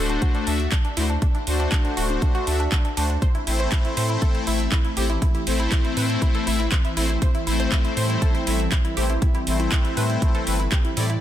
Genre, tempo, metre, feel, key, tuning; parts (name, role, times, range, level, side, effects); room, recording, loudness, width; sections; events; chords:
progressive house; 120 BPM; 4/4; straight; A dorian; A4 = 440 Hz
wide unison pluck; arpeggios; 0.0-11.2 s; D4 to C5; -30 LUFS; right 1 dB; sidechain pumping, digital delay
soft supersaw; stabs; 0.0-11.1 s; A3 to E5; -26 LUFS; left 3 dB; phaser, cassette tape, sidechain pumping, low-pass filter, digital delay
round analog bass; bass; 0.0-11.2 s; D1 to A2; -24 LUFS; equal; sidechain pumping
house drum kit; drums; 0.1-11.2 s; handclaps, hi-hat; -29 LUFS; right 2 dB; sidechain pumping on hats, studio reverb
electronic kick drum; drums; 0.2-10.8 s; -21 LUFS; equal; studio reverb
airy breathy pad; sustained chords; 3.2-11.2 s; E3 to C4; -31 LUFS; equal; chorus, phaser, sidechain pumping
light reverb, digital ambience; dense, heavily limited modern master; -19 LUFS; side -12 dB against mid
0.0-11.2 A section
0.0 D7; 3.2 Am